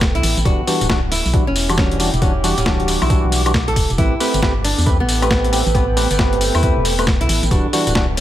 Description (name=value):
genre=UK garage, two-step garage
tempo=136 BPM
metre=4/4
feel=swing 63% on 16ths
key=A dorian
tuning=A4 = 439 Hz
part: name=organ-like FM bass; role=bass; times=0.0-8.2 s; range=D1 to E2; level=-20 LUFS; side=equal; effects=none
part: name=boom bap sampler-style drum kit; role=drums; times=0.0-8.2 s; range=hi-hat, snare drum, tambourine, woodblock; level=-21 LUFS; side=left 1 dB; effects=overdrive
part: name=electronic kick drum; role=drums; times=0.0-8.1 s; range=none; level=-19 LUFS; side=equal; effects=overdrive
part: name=warbly tape-like pad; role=texture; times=0.0-8.2 s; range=G3 to D6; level=-27 LUFS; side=right 1 dB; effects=chorus, built-in reverb, sidechain pumping
part: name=nylon-string guitar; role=melody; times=0.1-8.2 s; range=B3 to A4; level=-24 LUFS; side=right 2 dB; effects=digital delay
part: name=percussive organ stab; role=stabs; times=0.5-8.1 s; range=E3 to B4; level=-21 LUFS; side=equal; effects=chorus, digital delay
room=digital ambience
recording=none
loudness=-14 LUFS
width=side -12 dB against mid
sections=0.0-8.2 A section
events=none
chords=0.5 Em9; 4.0 Am9; 7.5 Em9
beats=0.01 | 0.45 0.89 1.33 1.78 | 2.22 2.66 3.10 3.54 | 3.98 4.42 4.87 5.31 | 5.75 6.19 6.63 7.07 | 7.51 7.95